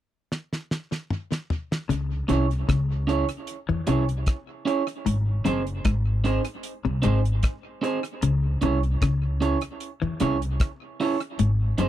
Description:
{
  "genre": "roots reggae",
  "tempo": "76 BPM",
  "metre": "4/4",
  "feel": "straight",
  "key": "C# harmonic minor",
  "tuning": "A4 = 440 Hz",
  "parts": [
    { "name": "damped 70s drum kit", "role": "drums", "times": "0.3-11.9 s", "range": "hi-hat, kick drum, rim click, snare drum, toms", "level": "-26 LUFS", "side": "equal", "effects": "tape echo" },
    { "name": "semi-hollow electric guitar", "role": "riff", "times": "1.9-11.9 s", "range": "F#2 to E3", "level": "-27 LUFS", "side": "left 5 dB", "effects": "spring reverb" },
    { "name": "upright bass", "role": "bass", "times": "1.9-11.9 s", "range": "F#1 to E2", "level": "-24 LUFS", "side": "equal", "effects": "none" },
    { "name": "electric guitar at the edge of break-up", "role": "accompaniment", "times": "2.3-11.9 s", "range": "B#3 to C#5", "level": "-27 LUFS", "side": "right 4 dB", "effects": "dub echo" }
  ],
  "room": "light reverb",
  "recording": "dry, close 1970s-style studio recording",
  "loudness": "-23 LUFS",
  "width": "side -12 dB against mid",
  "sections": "0.0-1.9 A section; 1.9-11.9 B section",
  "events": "drum fill 0.3-1.9",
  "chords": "0.0 N.C.; 1.9 C#m; 5.1 G#; 8.2 C#m",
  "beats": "0.32 1.11 | 1.90 2.69 3.48 4.27 | 5.06 5.85 6.64 7.43 | 8.22 9.01 9.80 10.60 | 11.39"
}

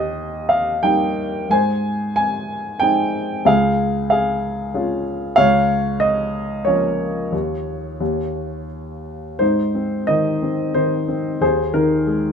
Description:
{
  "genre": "classical, lyrical solo piano",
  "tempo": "83-95 BPM",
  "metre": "3/4",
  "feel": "rubato",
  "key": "Ab major",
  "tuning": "A4 = 440 Hz",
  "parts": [
    { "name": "dark baby grand piano", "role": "solo", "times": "0.0-12.3 s", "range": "Db2 to Ab5", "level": "-17 LUFS", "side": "equal", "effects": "none" }
  ],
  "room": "light reverb",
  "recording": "none",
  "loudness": "-17 LUFS",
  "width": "side -6 dB against mid",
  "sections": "0.0-9.4 A section; 9.4-12.3 B section",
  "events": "none",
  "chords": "0.0 Eb; 1.5 Ab; 3.5 Db; 5.4 Bbm/Db; 7.3 Dbadd9/Eb; 9.4 Ab; 11.4 Ebsus4",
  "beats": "0.16 0.83 | 1.50 2.17 2.83 | 3.47 4.11 4.74 | 5.38 6.02 6.67 | 7.33 8.00 8.70 | 9.41 10.08 10.75 | 11.41 12.06"
}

